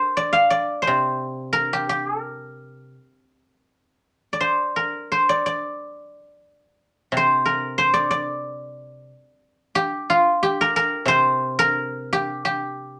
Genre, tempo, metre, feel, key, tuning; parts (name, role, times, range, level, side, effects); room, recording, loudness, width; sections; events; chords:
chinese traditional, Chinese solo plucked strings; 82-93 BPM; 4/4; rubato; A4 = 440 Hz
guzheng; solo; 0.0-13.0 s; C3 to F5; -22 LUFS; equal
moderate studio reverb, RT60 0.5 s; -21 LUFS; mono
0.0-13.0 A section